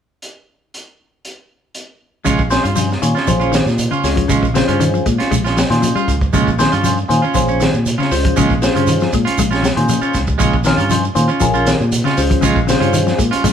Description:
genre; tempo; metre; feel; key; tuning
afrobeat; 118 BPM; 4/4; straight; Bb dorian; A4 = 441 Hz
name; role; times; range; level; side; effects
crunchy breakbeat drum kit; drums; 0.2-13.5 s; hi-hat, kick drum, snare drum; -20 LUFS; equal; none
clean electric guitar; arpeggios; 2.2-13.5 s; C3 to Ab3; -20 LUFS; left 4 dB; none
electric guitar at the edge of break-up; stabs; 2.2-13.5 s; Ab3 to F4; -20 LUFS; right 4 dB; warbly pitch drift
fingered electric bass; bass; 2.3-13.5 s; Bb1 to Bb2; -19 LUFS; right 1 dB; none
shekere; percussion; 2.3-13.5 s; none; -25 LUFS; right 5 dB; none
barky tine electric piano; accompaniment; 2.5-13.2 s; Db4 to Db5; -19 LUFS; left 2 dB; phaser
room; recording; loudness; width
moderate large studio reverb, RT60 1.1 s; band playing live in one room; -13 LUFS; side -8 dB against mid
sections
0.2-2.3 A section; 2.3-13.5 B section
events
none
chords
0.2 N.C.; 2.3 Bbm7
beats
| 0.22 0.73 1.24 1.75 | 2.26 2.77 3.28 3.79 | 4.30 4.81 5.32 5.83 | 6.33 6.84 7.35 7.86 | 8.37 8.88 9.38 9.89 | 10.40 10.91 11.42 11.92 | 12.43 12.94 13.44

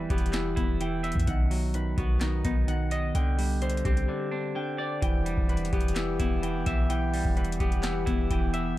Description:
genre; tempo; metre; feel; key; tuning
hip hop, trap; 128 BPM; 4/4; half-time; E minor; A4 = 440 Hz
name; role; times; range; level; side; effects
semi-hollow electric guitar; accompaniment; 0.0-8.8 s; D3 to E5; -32 LUFS; right 4 dB; low-pass filter
Celtic harp; arpeggios; 0.0-8.8 s; B3 to G5; -33 LUFS; left 5 dB; low-pass filter, tape echo
clean 808-style bass; bass; 0.0-8.8 s; E1 to E2; -29 LUFS; equal; none
booming analog drum machine; drums; 0.1-8.6 s; handclaps, hi-hat, kick drum, snare drum; -29 LUFS; equal; overdrive
accordion; sustained chords; 5.0-8.8 s; E3 to G4; -39 LUFS; left 2 dB; none
room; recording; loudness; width
little or no reverb; dark, warm production; -25 LUFS; side -15 dB against mid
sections
0.0-5.0 A section; 5.0-8.8 B section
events
break 4.1-5.0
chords
0.0 Em; 1.3 B; 3.1 Csus2; 5.0 Em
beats
0.34 0.81 | 1.27 1.74 2.21 2.68 | 3.15 3.62 4.09 4.55 | 5.02 5.49 5.96 6.43 | 6.90 7.37 7.84 8.30 | 8.77

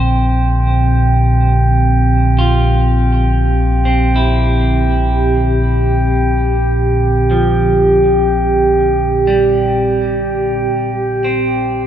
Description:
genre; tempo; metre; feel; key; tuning
ambient; 61 BPM; 4/4; straight; Bb lydian; A4 = 439 Hz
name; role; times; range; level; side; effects
warbly tape-like pad; sustained chords; 0.0-11.9 s; Bb2 to G4; -14 LUFS; equal; chorus, built-in reverb
semi-hollow electric guitar; arpeggios; 0.0-11.9 s; F3 to C5; -23 LUFS; equal; tape echo
warm sub bass; bass; 0.0-11.9 s; Bb1; -16 LUFS; equal; none
glass harmonica; texture; 0.0-11.9 s; G5; -20 LUFS; right 3 dB; none
room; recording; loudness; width
moderate cathedral reverb, RT60 5.6 s; none; -11 LUFS; side -10 dB against mid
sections
0.0-11.9 A section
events
fade-in on clean electric guitar 0.0-11.9; filter sweep on ambient pad 0.0-11.9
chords
0.0 Bb69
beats
0.91 1.89 | 2.88 3.86 4.84 5.83 | 6.81 7.79 8.78 9.76 | 10.74 11.73

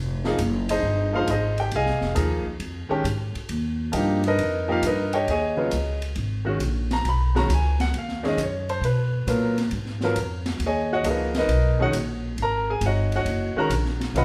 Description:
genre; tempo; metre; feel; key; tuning
modal jazz; 135 BPM; 4/4; swing 68% on 8ths; G# dorian from 5.3 s; A4 = 440 Hz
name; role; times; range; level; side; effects
upright bass; bass; 0.0-14.2 s; F1 to B2; -27 LUFS; equal; none
clear baby grand piano; accompaniment; 0.2-14.2 s; C#3 to B5; -27 LUFS; equal; none
open jazz drum kit; drums; 0.2-14.2 s; hi-hat, ride cymbal, snare drum; -37 LUFS; equal; none
room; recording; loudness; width
moderate large studio reverb, RT60 1.2 s; band playing live in one room; -24 LUFS; mono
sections
0.0-5.3 A section; 5.3-14.2 A section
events
none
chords
0.0 Fm7; 3.5 Eb(b13); 5.3 G#m11; 12.4 Badd9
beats
0.39 0.83 1.27 | 1.72 2.16 2.61 3.05 | 3.50 3.94 4.38 4.83 | 5.27 5.72 6.16 6.61 | 7.05 7.50 7.94 8.38 | 8.83 9.27 9.72 10.16 | 10.60 11.05 11.49 11.94 | 12.38 12.82 13.27 13.71 | 14.15

